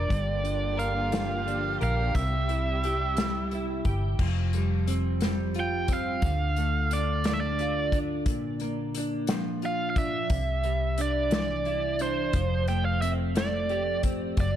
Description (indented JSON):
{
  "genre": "six-eight pop ballad",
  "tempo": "59 BPM (dotted quarters)",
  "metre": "6/8",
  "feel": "straight",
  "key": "F major",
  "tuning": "A4 = 440 Hz",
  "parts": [
    { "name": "biting lead guitar", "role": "melody", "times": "0.0-14.6 s", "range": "C5 to G5", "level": "-30 LUFS", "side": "right 3 dB", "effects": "overdrive, tape echo" },
    { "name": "direct-recorded clean electric guitar", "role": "accompaniment", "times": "0.0-14.6 s", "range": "G2 to Bb4", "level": "-31 LUFS", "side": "equal", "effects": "double-tracked left and right" },
    { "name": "vintage muted fingered electric bass", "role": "bass", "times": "0.0-14.6 s", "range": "F1 to D2", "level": "-29 LUFS", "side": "equal", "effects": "none" },
    { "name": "warm studio string section", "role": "sustained chords", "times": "0.1-4.2 s", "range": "C3 to G4", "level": "-36 LUFS", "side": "left 1 dB", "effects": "none" },
    { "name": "unplugged drum kit", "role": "drums", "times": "0.1-14.5 s", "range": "crash cymbal, hi-hat, kick drum, snare drum", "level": "-30 LUFS", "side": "left 1 dB", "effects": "none" }
  ],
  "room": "light reverb, small room ambience",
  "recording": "dark, warm production",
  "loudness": "-25 LUFS",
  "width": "side -10 dB against mid",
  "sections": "0.0-4.2 A section; 4.2-14.6 B section",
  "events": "none",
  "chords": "0.1 Gm7; 2.1 C; 4.2 Fsus2; 6.2 Dm; 8.3 Bb; 10.3 Cadd9; 12.3 Fadd9"
}